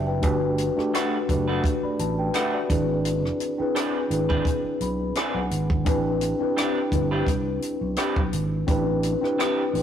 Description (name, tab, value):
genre	lush 1970s-style soul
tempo	85 BPM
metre	4/4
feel	swing 54% on 16ths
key	unclear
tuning	A4 = 440 Hz
part	mellow tine electric piano	accompaniment	0.0-9.8 s	A3 to B5	-25 LUFS	left 1 dB	medium stereo tremolo
part	fingered electric bass	bass	0.0-9.8 s	F#1 to C2	-28 LUFS	right 1 dB	none
part	compact cocktail drum kit	drums	0.2-9.8 s	hi-hat, kick drum, rim click	-27 LUFS	equal	none
part	electric guitar through a small old amp	riff	0.9-9.6 s	A3 to B4	-29 LUFS	right 1 dB	none
room	light reverb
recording	rough rehearsal-room recording, warm saturation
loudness	-22 LUFS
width	side -9 dB against mid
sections	0.0-9.8 A section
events	tine electric piano fill 0.0, 4.5-5.9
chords	0.2 Gmaj9; 2.7 E7b13/G#; 5.9 Am11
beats	| 0.23 0.94 1.64 2.34 | 3.05 3.75 4.46 5.16 | 5.87 6.57 7.27 7.98 | 8.68 9.39